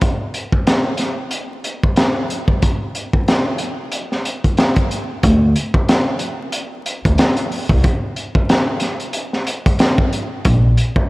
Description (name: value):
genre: hip hop, boom-bap hip-hop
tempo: 92 BPM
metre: 4/4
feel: swing 56% on 16ths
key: unclear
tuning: A4 = 442 Hz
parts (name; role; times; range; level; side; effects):
- crunchy breakbeat drum kit; drums; 0.0-11.1 s; hi-hat, kick drum, snare drum; -16 LUFS; equal; none
- upright bass; bass; 5.2-10.7 s; Bb1 to D2; -14 LUFS; equal; none
room: light reverb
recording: vinyl crackle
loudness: -15 LUFS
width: side -21 dB against mid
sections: 0.0-5.2 A section; 5.2-11.1 B section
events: none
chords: none